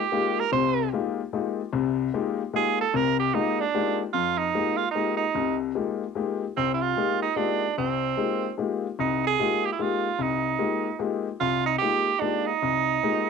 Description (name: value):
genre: jazz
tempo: 149 BPM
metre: 3/4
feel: swing 64% on 8ths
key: F dorian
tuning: A4 = 444 Hz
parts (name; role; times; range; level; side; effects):
- bright tenor saxophone; melody; 0.0-13.3 s; C4 to C5; -25 LUFS; right 10 dB; cassette tape
- warm baby grand piano; accompaniment; 0.1-13.3 s; C2 to G4; -26 LUFS; left 8 dB; cassette tape
room: light reverb, small room ambience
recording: home recording on cassette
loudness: -23 LUFS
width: side -5 dB against mid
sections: 0.0-4.1 A section; 4.1-13.3 B section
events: tenor saxophone solo 0.0-4.1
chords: 0.0 Fm11